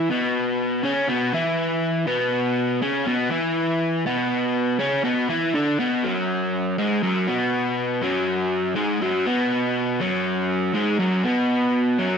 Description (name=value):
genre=rock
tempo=121 BPM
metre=4/4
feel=straight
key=unclear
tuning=A4 = 440 Hz
part: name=crunchy overdriven guitar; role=solo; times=0.0-12.2 s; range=F#2 to E4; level=-20 LUFS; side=equal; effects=slapback echo
room=moderate club reverb, RT60 0.6 s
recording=none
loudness=-20 LUFS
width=side -6 dB against mid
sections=0.0-6.0 A section; 6.0-12.2 B section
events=none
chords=0.0 Bsus4; 6.0 N.C.